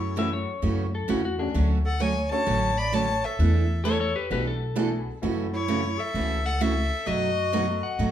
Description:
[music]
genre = country, western swing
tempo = 130 BPM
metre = 4/4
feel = swing 66% on 8ths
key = unclear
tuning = A4 = 442 Hz
[part]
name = rich fiddle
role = melody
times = 0.0-8.0 s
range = C#5 to B5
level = -29 LUFS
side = left 4 dB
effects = none
[part]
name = breathy clarinet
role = second line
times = 0.0-8.0 s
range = E4 to D5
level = -31 LUFS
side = right 2 dB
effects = none
[part]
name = honky-tonk upright piano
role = accompaniment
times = 0.0-7.8 s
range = A3 to A4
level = -33 LUFS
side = left 4 dB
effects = none
[part]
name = upright bass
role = bass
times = 0.0-8.1 s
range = A1 to G#2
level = -27 LUFS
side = equal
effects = none
[part]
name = clean lap steel guitar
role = second line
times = 0.2-8.1 s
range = D4 to F#5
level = -30 LUFS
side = left 5 dB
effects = none
[part]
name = picked steel-string acoustic guitar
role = accompaniment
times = 0.2-8.1 s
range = B2 to A4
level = -28 LUFS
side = right 4 dB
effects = none
[sound]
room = wet large studio reverb, RT60 0.8 s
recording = band playing live in one room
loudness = -23 LUFS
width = side -10 dB against mid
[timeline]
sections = 0.0-8.1 A section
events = none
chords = 0.0 F#m7; 1.6 Dmaj7; 3.4 E9sus4; 5.2 F#m7; 7.1 B7/F#

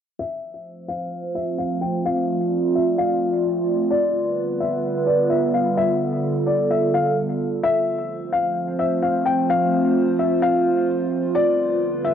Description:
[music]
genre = hip hop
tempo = 129 BPM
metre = 4/4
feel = half-time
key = F lydian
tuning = A4 = 440 Hz
[part]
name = felt-muted upright piano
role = melody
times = 0.2-12.1 s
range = D5 to G5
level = -23 LUFS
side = left 4 dB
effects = low-pass filter, tape echo
[part]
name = warbly tape-like pad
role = sustained chords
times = 0.9-12.1 s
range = D3 to D5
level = -21 LUFS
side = right 2 dB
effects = chorus, built-in reverb, phaser, low-pass filter, cassette tape
[sound]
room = moderate spring reverb, RT60 2.8 s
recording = home recording on cassette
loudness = -19 LUFS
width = side -8 dB against mid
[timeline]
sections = 0.2-12.1 A section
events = filter sweep 0.2-12.1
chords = 0.2 Fmaj7; 3.9 G7; 7.6 Fmaj7; 11.3 G7

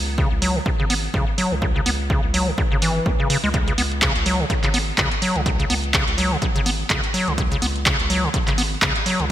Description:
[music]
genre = acid house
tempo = 125 BPM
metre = 4/4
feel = swing 57% on 16ths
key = C# minor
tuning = A4 = 439 Hz
[part]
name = saturated sub bass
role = bass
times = 0.0-9.3 s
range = G#1 to C#2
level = -26 LUFS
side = equal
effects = sidechain pumping
[part]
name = acid bass, square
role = riff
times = 0.2-9.3 s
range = C#3 to C#4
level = -22 LUFS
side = equal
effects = tube saturation, ping-pong delay
[part]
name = electronic kick drum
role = drums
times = 0.2-8.9 s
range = none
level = -23 LUFS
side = equal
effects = none
[part]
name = punchy analog drum machine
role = drums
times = 0.4-9.3 s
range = handclaps, hi-hat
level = -23 LUFS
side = right 1 dB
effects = none
[sound]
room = moderate lush hall reverb, RT60 2.1 s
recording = bright 1980s-style digital production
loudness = -18 LUFS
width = side -12 dB against mid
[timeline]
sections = 0.0-9.3 A section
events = none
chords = 0.0 C#5

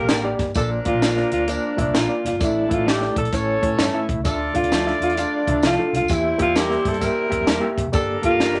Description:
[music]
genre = uptempo 1960s-style soul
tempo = 130 BPM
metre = 4/4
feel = swing 65% on 8ths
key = D minor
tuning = A4 = 440 Hz
[part]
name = breathy alto saxophone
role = melody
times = 0.0-8.6 s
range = D4 to C#5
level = -25 LUFS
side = equal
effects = none
[part]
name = warm horn section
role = second line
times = 0.0-8.6 s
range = D3 to D5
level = -31 LUFS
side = equal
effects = none
[part]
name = overdriven reed electric piano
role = accompaniment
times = 0.0-8.6 s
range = G2 to F5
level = -28 LUFS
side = equal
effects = fast tremolo
[part]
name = vintage muted fingered electric bass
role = bass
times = 0.0-8.6 s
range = F1 to A2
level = -31 LUFS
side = equal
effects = none
[part]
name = electric guitar through a small old amp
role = stabs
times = 0.1-8.6 s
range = F3 to Bb4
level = -30 LUFS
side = equal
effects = none
[part]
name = compact cocktail drum kit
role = drums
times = 0.1-8.6 s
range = hi-hat, kick drum, snare drum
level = -26 LUFS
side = equal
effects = none
[part]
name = tambourine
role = percussion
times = 0.1-8.5 s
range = none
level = -38 LUFS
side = equal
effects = none
[sound]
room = moderate studio ambience, RT60 0.5 s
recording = nothing above 11.0 kHz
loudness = -21 LUFS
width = mono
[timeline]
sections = 0.0-8.6 A section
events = none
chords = 0.0 Gm; 0.6 Bb; 2.4 Asus4; 3.3 A; 4.3 Dmadd9; 6.1 Edim; 7.9 Gm

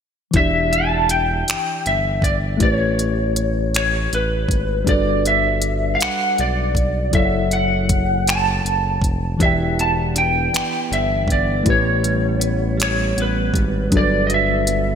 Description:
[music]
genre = slow six-eight R&B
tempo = 53 BPM (dotted quarters)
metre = 6/8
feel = straight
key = E dorian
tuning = A4 = 440 Hz
[part]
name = tine electric piano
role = accompaniment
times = 0.3-15.0 s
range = E3 to G5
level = -24 LUFS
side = left 3 dB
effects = medium stereo tremolo
[part]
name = smooth synth bass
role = bass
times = 0.3-15.0 s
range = E1 to B1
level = -22 LUFS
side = equal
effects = none
[part]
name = smooth R&B drum kit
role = drums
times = 0.3-14.9 s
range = finger snaps, hi-hat, kick drum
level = -21 LUFS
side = equal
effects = gated reverb
[part]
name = lightly driven lead guitar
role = melody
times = 0.4-15.0 s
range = B4 to A5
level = -20 LUFS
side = equal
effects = lush chorus
[part]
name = clean electric guitar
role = second line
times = 9.4-15.0 s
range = G2 to D4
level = -26 LUFS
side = right 6 dB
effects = analog chorus
[sound]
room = moderate lush hall reverb, RT60 2.3 s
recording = bright 1980s-style digital production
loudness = -16 LUFS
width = side -7 dB against mid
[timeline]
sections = 0.3-15.0 A section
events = none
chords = 0.3 Em7; 2.6 A9; 4.9 Gmaj9; 7.1 F#m7; 9.4 Em7; 11.7 A9; 13.9 Gmaj9

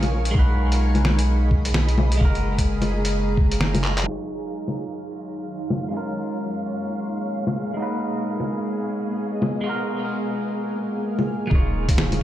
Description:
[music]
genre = future garage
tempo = 129 BPM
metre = 4/4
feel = swing 60% on 16ths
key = Eb minor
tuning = A4 = 439 Hz
[part]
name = granular cloud pad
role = sustained chords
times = 0.0-12.2 s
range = Gb3 to Eb6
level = -29 LUFS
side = right 1 dB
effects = built-in reverb, vintage 12-bit sampler grit, sidechain pumping
[part]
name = soft dub sub bass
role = bass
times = 0.0-4.1, 11.5-12.2 s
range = Eb1 to B1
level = -22 LUFS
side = equal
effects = none
[part]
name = lo-fi sampler-style drum kit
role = drums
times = 0.0-12.2 s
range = bongos, handclaps, hi-hat, snare drum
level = -24 LUFS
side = left 1 dB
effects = overdrive
[part]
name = clean electric guitar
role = accompaniment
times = 0.3-12.2 s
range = Gb3 to Db5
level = -28 LUFS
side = left 1 dB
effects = vintage 12-bit sampler grit, sidechain pumping, tape echo
[part]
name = electronic kick drum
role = drums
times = 0.3-3.5, 11.5-12.0 s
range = none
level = -20 LUFS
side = equal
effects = overdrive
[part]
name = flickering grainy texture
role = texture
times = 4.8-11.5 s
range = F5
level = -38 LUFS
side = right 4 dB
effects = built-in reverb
[sound]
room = little or no reverb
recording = played on a big sound system in a bare room, stone room reverb, low-pass filter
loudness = -20 LUFS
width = side -13 dB against mid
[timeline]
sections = 0.0-4.1 A section; 4.1-11.5 B section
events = drum fill 3.8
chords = 0.4 B6; 2.2 Gbmaj9; 4.1 Ebm9; 5.9 Bbm7; 7.8 B6; 9.7 Gbmaj9; 11.5 Ebm9

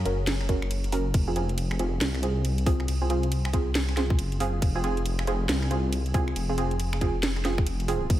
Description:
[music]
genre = deep dubstep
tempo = 138 BPM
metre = 4/4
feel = swing 62% on 16ths, half-time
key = F phrygian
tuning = A4 = 440 Hz
[part]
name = deep dark ambient pad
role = sustained chords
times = 0.0-1.1 s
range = Bb3 to Db5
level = -44 LUFS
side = left 2 dB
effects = none
[part]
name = dark detuned saw bass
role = bass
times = 0.0-8.2 s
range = F1 to C2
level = -27 LUFS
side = equal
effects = none
[part]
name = filtered dub chord stab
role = stabs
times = 0.1-8.0 s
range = C4 to Bb4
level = -30 LUFS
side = right 2 dB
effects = chorus, dub echo
[part]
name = garage drum kit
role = drums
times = 0.1-8.2 s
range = crash cymbal, finger snaps, hi-hat, snare drum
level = -32 LUFS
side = right 1 dB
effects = overdrive
[part]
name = electronic kick drum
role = drums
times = 0.5-8.2 s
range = none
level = -24 LUFS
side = equal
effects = overdrive
[sound]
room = light reverb, digital ambience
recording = none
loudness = -24 LUFS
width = side -13 dB against mid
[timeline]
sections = 0.0-1.1 A section; 1.1-8.2 A section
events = drop 0.0-1.1, 1.1-8.2; kick drops out 0.7-1.1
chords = 0.0 Gb; 1.1 Fm

